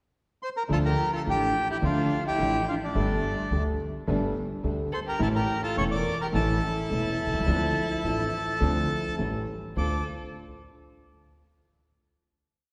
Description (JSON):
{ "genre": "tango", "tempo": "106 BPM", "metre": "4/4", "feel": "rubato", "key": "D minor", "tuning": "A4 = 436 Hz", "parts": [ { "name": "bandoneon", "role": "melody", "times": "0.4-10.0 s", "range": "D4 to D6", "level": "-32 LUFS", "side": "equal", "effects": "none" }, { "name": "warm violin", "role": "second line", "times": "0.7-10.0 s", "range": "A3 to Bb4", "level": "-36 LUFS", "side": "equal", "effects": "none" }, { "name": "warm concert grand piano", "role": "accompaniment", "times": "0.7-10.0 s", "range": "E1 to C5", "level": "-33 LUFS", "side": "equal", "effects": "none" }, { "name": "warm studio string section", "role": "stabs", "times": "0.7-10.0 s", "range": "F3 to F4", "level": "-40 LUFS", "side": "equal", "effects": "none" }, { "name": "upright bass", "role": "bass", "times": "0.7-10.0 s", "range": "E1 to D2", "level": "-33 LUFS", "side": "equal", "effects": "none" } ], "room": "wet concert hall reverb, RT60 2.3 s", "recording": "heard from further back in the room", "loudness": "-27 LUFS", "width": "mono", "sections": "0.0-0.7 pickup bar; 0.7-9.8 A section; 9.8-12.0 final chord", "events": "none", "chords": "0.0 Bbsus2; 0.7 Dm; 3.0 Gsus2; 5.2 A; 7.5 Dm7; 9.2 A7; 9.8 Dm7" }